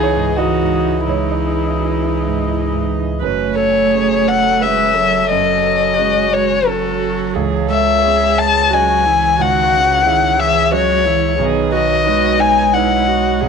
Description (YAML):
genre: neoclassical piano and strings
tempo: 88 BPM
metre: 3/4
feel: rubato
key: C# minor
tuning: A4 = 441 Hz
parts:
  - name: dark violin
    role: melody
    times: 0.0-13.4 s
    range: E4 to A5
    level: -15 LUFS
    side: left 7 dB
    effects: none
  - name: dark cello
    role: second line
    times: 0.0-13.5 s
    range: C#3 to A3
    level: -21 LUFS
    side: right 13 dB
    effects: none
  - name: dark viola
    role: accompaniment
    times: 0.0-13.5 s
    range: D#4 to B4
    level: -23 LUFS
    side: right 11 dB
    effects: none
  - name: warm grand piano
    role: accompaniment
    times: 0.0-13.5 s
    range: B1 to E5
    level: -24 LUFS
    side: right 12 dB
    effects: none
  - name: pedal harmonium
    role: sustained chords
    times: 0.0-13.5 s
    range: E3 to G#5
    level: -24 LUFS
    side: right 1 dB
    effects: none
  - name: warm sub bass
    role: bass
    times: 0.0-13.5 s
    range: F#1 to C#2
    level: -24 LUFS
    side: left 1 dB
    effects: none
room: moderate echo chamber reverb, RT60 1.6 s, small room ambience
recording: 1960s-style stereo with parts hard left and right, nothing above 10.4 kHz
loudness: -12 LUFS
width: side -6 dB against mid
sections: 0.0-3.2 A section; 3.2-13.5 B section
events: none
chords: 0.0 C#madd9; 3.2 F#madd9; 7.4 C#madd9; 11.4 B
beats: 0.37 | 1.07 1.79 2.51 | 3.23 3.94 4.63 | 5.31 5.99 6.67 | 7.35 8.04 8.72 | 9.39 10.06 10.73 | 11.39 12.07 12.74 | 13.42